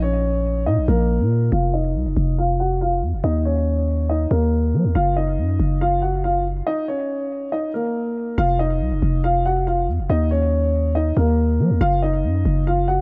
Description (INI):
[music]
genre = hip hop, drill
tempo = 140 BPM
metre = 4/4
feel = half-time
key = unclear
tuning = A4 = 440 Hz
[part]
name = dark concert grand piano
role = melody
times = 0.0-13.0 s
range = Bb3 to Gb5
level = -24 LUFS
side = equal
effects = low-pass filter, tape echo
[part]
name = growling 808-style bass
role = bass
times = 0.0-13.0 s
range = F1 to Gb3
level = -22 LUFS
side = equal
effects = none
[sound]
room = small room ambience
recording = echo-heavy mix, faint mains hum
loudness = -20 LUFS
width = mono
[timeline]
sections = 0.0-1.5 A section; 1.5-8.4 B section; 8.4-13.0 C section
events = filter sweep on grand piano 1.5-8.4; stop 6.7-8.4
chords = 0.0 Bbm; 1.5 F5; 3.2 Eb5; 5.0 Ebmadd9/Gb; 6.7 Bbm; 8.4 F5; 10.1 Eb5; 11.8 Ebmadd9/Gb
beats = 0.24 0.67 1.10 | 1.52 1.95 2.38 2.81 | 3.24 3.67 4.10 4.52 | 4.95 5.38 5.81 6.24 | 6.67 7.10 7.52 7.95 | 8.38 8.81 9.24 9.67 | 10.10 10.52 10.95 11.38 | 11.81 12.24 12.67